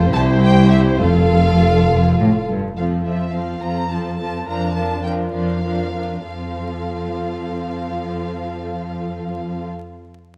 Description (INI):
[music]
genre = quick classical-period movement for string orchestra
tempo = 64-71 BPM (dotted quarters)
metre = 6/8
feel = straight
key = F major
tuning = A4 = 438 Hz
[part]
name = dark chamber violin section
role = second line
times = 0.0-9.7 s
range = E4 to Bb4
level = -26 LUFS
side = equal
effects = none
[part]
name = rich chamber viola section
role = accompaniment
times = 0.0-9.7 s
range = F3 to C5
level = -29 LUFS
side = equal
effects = none
[part]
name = rich studio double bass section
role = bass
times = 0.0-2.6 s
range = F1 to C2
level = -21 LUFS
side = equal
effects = none
[part]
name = warm chamber cello section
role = bass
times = 0.0-9.7 s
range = C2 to A2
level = -22 LUFS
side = equal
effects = none
[part]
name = rich chamber violin section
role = melody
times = 0.1-9.7 s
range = E5 to Bb5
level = -30 LUFS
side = equal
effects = none
[sound]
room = light reverb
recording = vinyl crackle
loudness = -19 LUFS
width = mono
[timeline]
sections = 0.0-2.8 A section; 2.8-6.3 B section; 6.3-9.9 C section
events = slowing down 1.9-6.3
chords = 0.1 C; 1.0 F; 4.5 Bb/F; 6.3 F